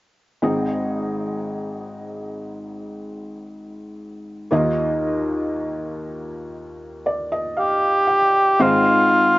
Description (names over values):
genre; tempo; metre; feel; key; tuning
folk; 59 BPM; 4/4; straight; unclear; A4 = 440 Hz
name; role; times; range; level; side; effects
felt-muted upright piano; accompaniment; 0.4-9.4 s; Ab1 to G5; -23 LUFS; equal; cassette tape
warm cor anglais; melody; 7.6-9.4 s; F4 to G4; -15 LUFS; equal; none
room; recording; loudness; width
moderate studio reverb, RT60 0.5 s; home recording on cassette, nothing above 7.6 kHz; -18 LUFS; side -19 dB against mid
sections
0.4-8.6 A section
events
none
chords
0.4 Ab; 4.5 Ebsus2; 8.6 Ab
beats
| 0.43 1.45 2.47 3.49 | 4.51 5.54 6.56 7.58 | 8.60